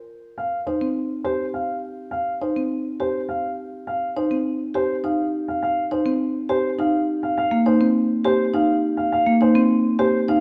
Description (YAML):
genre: classical, minimalist pattern music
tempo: 103 BPM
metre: 3/4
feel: straight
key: C minor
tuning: A4 = 436 Hz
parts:
  - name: dark grand piano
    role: melody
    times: 0.4-10.4 s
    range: C5 to F5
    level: -27 LUFS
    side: equal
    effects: none
  - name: marimba with medium mallets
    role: arpeggios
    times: 0.7-10.4 s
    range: C4 to G4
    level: -25 LUFS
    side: equal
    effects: none
  - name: marimba with medium mallets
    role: accompaniment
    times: 7.5-9.5 s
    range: Bb3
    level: -22 LUFS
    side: equal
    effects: none
room: wet recital hall reverb, RT60 1.4 s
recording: dark, warm production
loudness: -22 LUFS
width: mono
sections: 0.4-10.4 A section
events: none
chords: 0.4 Cm